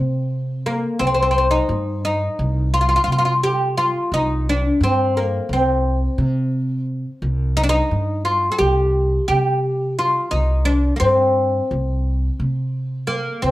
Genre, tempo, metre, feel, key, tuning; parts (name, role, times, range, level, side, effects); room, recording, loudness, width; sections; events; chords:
Turkish makam ensemble; 174 BPM (eighths); 9/8; straight; C makam huseyni; A4 = 440 Hz
oud; melody; 0.0-13.5 s; Bb3 to A4-30c; -19 LUFS; left 1 dB; plate reverb
upright bass; bass; 0.0-13.5 s; C2 to C3; -20 LUFS; equal
light reverb; -17 LUFS; side -16 dB against mid
0.0-13.5 A section